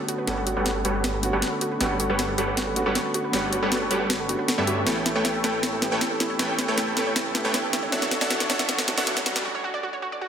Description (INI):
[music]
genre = future bass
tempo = 157 BPM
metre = 4/4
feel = half-time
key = G lydian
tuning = A4 = 443 Hz
[part]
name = warm grand piano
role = accompaniment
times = 0.0-10.3 s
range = D3 to F#5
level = -30 LUFS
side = right 1 dB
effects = dub echo
[part]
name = airy breathy pad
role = sustained chords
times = 0.0-9.4 s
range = A4 to E6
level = -34 LUFS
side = equal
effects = chorus
[part]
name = wide unison pluck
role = arpeggios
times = 0.0-10.3 s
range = E4 to D5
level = -32 LUFS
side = right 2 dB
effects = dub echo
[part]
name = trap drum kit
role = drums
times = 0.1-9.4 s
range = hi-hat, snare drum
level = -26 LUFS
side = left 1 dB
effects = none
[part]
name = supersaw stab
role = riff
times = 0.3-9.1 s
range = G3 to G5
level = -26 LUFS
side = equal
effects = low-pass filter, dub echo
[part]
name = wide detuned saw bass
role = bass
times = 0.3-9.1 s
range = D1 to G2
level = -35 LUFS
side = equal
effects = chorus
[part]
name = riser and reverse cymbal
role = sound effects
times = 6.3-10.3 s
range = none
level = -36 LUFS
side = equal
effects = none
[sound]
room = wet digital room reverb, RT60 1.0 s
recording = dense, heavily limited modern master, high-pass filter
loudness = -22 LUFS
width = side -8 dB against mid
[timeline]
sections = 0.0-10.3 A section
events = build-up 0.0-10.3; drum fill 0.0-9.5; filter sweep on supersaw synth 0.0-10.3; filter sweep on synth arpeggio sound 0.0-10.3; filter sweep on analog synth pad 0.0-10.3; filter sweep 0.0-10.3; riser 6.3-9.5; break 9.5-10.3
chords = 0.0 Gmaj9#11; 4.9 A7; 7.9 Dmaj7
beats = | 0.28 0.66 1.04 1.43 | 1.81 2.19 2.57 2.96 | 3.34 3.72 4.10 4.48 | 4.87 5.25 5.63 6.01 | 6.39 6.78 7.16 7.54 | 7.92 8.30 8.69 9.07 | 9.45 9.83 10.22